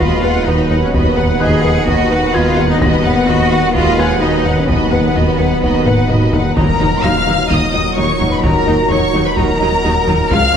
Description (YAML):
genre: cinematic, hybrid orchestral and electronic film score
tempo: 128 BPM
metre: 4/4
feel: straight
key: Eb minor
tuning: A4 = 440 Hz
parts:
  - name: warm symphonic violin section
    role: melody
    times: 0.0-10.6 s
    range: F#5 to F6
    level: -21 LUFS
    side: left 2 dB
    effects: none
  - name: warm symphonic violin section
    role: second line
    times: 0.0-10.6 s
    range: Bb4 to F#5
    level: -21 LUFS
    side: left 2 dB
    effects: none
  - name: rich symphonic viola section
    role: accompaniment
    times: 0.0-10.6 s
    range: F3 to B4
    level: -24 LUFS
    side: equal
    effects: none
  - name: dark trombone section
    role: sustained chords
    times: 0.0-10.6 s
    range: Bb2 to B3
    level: -25 LUFS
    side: right 3 dB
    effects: none
  - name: deep dark ambient pad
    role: sustained chords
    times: 0.4-10.6 s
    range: D#3 to B4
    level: -22 LUFS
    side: right 1 dB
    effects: chorus, built-in reverb
  - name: mellow French horn section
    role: sustained chords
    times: 0.0-10.6 s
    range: D#3 to F4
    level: -24 LUFS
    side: left 5 dB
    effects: none
  - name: soft round pluck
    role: arpeggios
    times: 0.0-10.6 s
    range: Db3 to B4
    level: -24 LUFS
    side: left 2 dB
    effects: none
  - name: smooth synth bass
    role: riff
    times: 0.0-10.6 s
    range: Db2 to D#2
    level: -21 LUFS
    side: right 1 dB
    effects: none
  - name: clear symphonic double bass section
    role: bass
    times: 0.0-10.6 s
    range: Db2 to D#2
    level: -24 LUFS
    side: right 2 dB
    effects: none
  - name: detuned saw bass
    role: bass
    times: 0.0-10.6 s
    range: D#1 to Db2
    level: -25 LUFS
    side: equal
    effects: none
  - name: mellow tuba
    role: bass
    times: 0.0-10.6 s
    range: Db2 to D#2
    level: -22 LUFS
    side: right 3 dB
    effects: none
  - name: rich symphonic cello section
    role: bass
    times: 0.0-10.6 s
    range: Db3 to Ab4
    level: -20 LUFS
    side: equal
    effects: none
  - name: solo taiko drums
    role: drums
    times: 0.0-10.6 s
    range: none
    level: -20 LUFS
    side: equal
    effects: none
  - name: felt-muted upright piano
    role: texture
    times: 0.0-10.3 s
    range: D#5 to Bb6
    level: -27 LUFS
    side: left 2 dB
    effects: digital delay
  - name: impact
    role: sound effects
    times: 6.6-8.4 s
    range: none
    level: -25 LUFS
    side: left 1 dB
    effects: none
room: moderate scoring stage reverb, RT60 1.5 s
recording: none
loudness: -11 LUFS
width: side -8 dB against mid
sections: 0.0-6.6 A section; 6.6-10.6 A section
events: drum fill 5.9-6.6; impact 6.6-8.4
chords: 0.0 B/D#; 6.6 Ebm